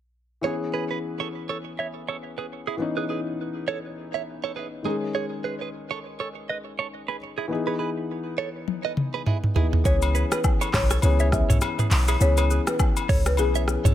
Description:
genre	afrobeats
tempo	102 BPM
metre	4/4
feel	swing 58% on 16ths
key	C# minor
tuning	A4 = 439 Hz
part	dark grand piano	accompaniment	0.4-13.9 s	D#3 to G#4	-30 LUFS	left 4 dB	none
part	direct-recorded clean electric guitar	riff	0.4-13.9 s	D#4 to E5	-31 LUFS	right 7 dB	phaser, tape echo
part	afro-pop drum kit	drums	8.7-13.9 s	handclaps, hi-hat, kick drum, rim click, shaker, toms	-24 LUFS	equal	none
part	folk marimba with medium mallets	melody	9.9-13.8 s	G#4 to E5	-28 LUFS	left 2 dB	tape echo
part	clean 808-style bass	bass	9.9-13.9 s	B1 to C#2	-21 LUFS	equal	none
part	agogo bells and woodblock	percussion	10.0-13.5 s	none	-32 LUFS	left 5 dB	none
room	digital ambience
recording	faint mains hum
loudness	-23 LUFS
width	side -12 dB against mid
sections	0.4-9.9 A section; 9.9-13.9 B section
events	drum fill 8.7-9.9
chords	0.4 C#m7; 4.9 G#sus4; 7.5 Emaj7; 9.9 C#m7

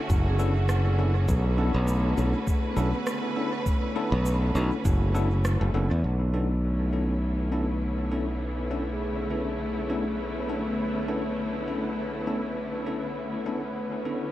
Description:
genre	ambient dub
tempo	101 BPM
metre	4/4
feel	swing 56% on 16ths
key	B dorian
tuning	A4 = 440 Hz
part	clear symphonic string section	sustained chords	0.0-14.3 s	D3 to B4	-33 LUFS	equal	none
part	vibraphone with medium mallets	arpeggios	0.0-14.3 s	A3 to G#4	-34 LUFS	equal	low-pass filter, analog delay
part	modern bright fingered electric bass	bass	0.1-14.3 s	F#1 to E2	-26 LUFS	equal	low-pass filter
part	electronic kick drum	drums	0.1-5.0 s	none	-26 LUFS	equal	none
part	electronic shaker and rim click	drums	0.1-5.6 s	none	-38 LUFS	right 1 dB	overdrive, low-pass filter on perc, low-pass filter on snare, low-pass filter on room, dub echo
part	bell-like tine electric piano	stabs	0.4-14.3 s	B3 to A4	-33 LUFS	left 2 dB	medium stereo tremolo, dub echo
part	bubbling stepped-filter texture	texture	6.0-14.3 s	B3 to B4	-37 LUFS	equal	chorus, built-in reverb
room	light reverb, digital ambience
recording	echo-heavy mix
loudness	-24 LUFS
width	side -14 dB against mid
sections	0.0-6.0 A section; 6.0-14.3 B section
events	none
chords	0.0 Bm11

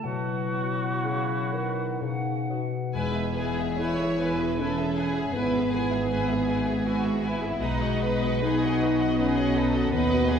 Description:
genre	classical, slow romantic movement for symphony orchestra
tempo	60-83 BPM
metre	3/4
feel	rubato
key	E major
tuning	A4 = 444 Hz
part	hollow small flute group	second line	0.0-2.6 s	F#5	-36 LUFS	right 4 dB	none
part	warm clarinet	second line	0.0-2.6 s	D#4 to E4	-37 LUFS	right 2 dB	none
part	dark bassoon	accompaniment	0.0-2.9 s	B2 to D#3	-35 LUFS	right 2 dB	none
part	dark French horn section	sustained chords	0.0-10.4 s	F#3 to E4	-28 LUFS	equal	none
part	concert harp	arpeggios	0.0-10.4 s	E2 to B4	-32 LUFS	left 7 dB	none
part	warm oboe	second line	0.1-2.0 s	F#4	-33 LUFS	right 2 dB	none
part	warm symphonic violin section	melody	2.9-10.4 s	D#5 to G#5	-37 LUFS	left 2 dB	none
part	rich symphonic viola section	accompaniment	2.9-10.4 s	D#4 to D#5	-33 LUFS	right 1 dB	none
part	clear symphonic cello section	bass	2.9-10.4 s	D#2 to B2	-31 LUFS	right 2 dB	none
part	rich symphonic double bass section	bass	2.9-10.4 s	E1 to D#2	-32 LUFS	right 2 dB	none
part	rich chamber violin section	second line	3.0-10.4 s	D#4 to C#5	-32 LUFS	left 1 dB	none
room	wet scoring stage reverb, RT60 1.6 s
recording	heard from further back in the room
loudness	-24 LUFS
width	side -7 dB against mid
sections	0.0-2.9 A section; 2.9-10.4 B section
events	none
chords	0.0 Bsus4; 2.0 B; 2.9 E; 5.3 E/G#; 7.6 B

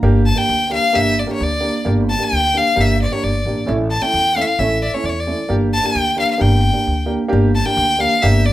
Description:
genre	klezmer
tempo	132 BPM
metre	2/4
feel	straight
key	G dorian sharp4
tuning	A4 = 440 Hz
part	dark upright piano	accompaniment	0.0-8.4 s	A3 to G4	-20 LUFS	right 2 dB	none
part	upright bass	bass	0.0-8.5 s	G1 to E2	-18 LUFS	equal	none
part	bright violin	melody	0.3-8.5 s	C#5 to A5	-17 LUFS	left 2 dB	none
room	light reverb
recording	band playing live in one room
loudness	-14 LUFS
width	side -14 dB against mid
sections	0.0-7.3 A section; 7.3-8.5 A section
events	none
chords	0.0 Gm; 3.7 A; 5.5 Gm

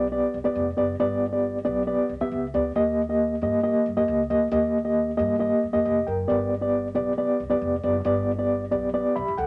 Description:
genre	uptempo 1960s-style soul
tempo	136 BPM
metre	4/4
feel	straight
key	unclear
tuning	A4 = 441 Hz
part	mellow reed electric piano	accompaniment	0.0-9.5 s	Bb3 to B5	-24 LUFS	equal	fast tremolo
part	upright bass	bass	0.0-9.5 s	F1 to G2	-36 LUFS	equal	none
room	moderate studio reverb, RT60 0.5 s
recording	nothing above 10.7 kHz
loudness	-24 LUFS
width	mono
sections	0.0-9.5 A section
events	reed electric piano fill 8.9-9.5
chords	0.0 G; 2.8 Eb; 6.3 G

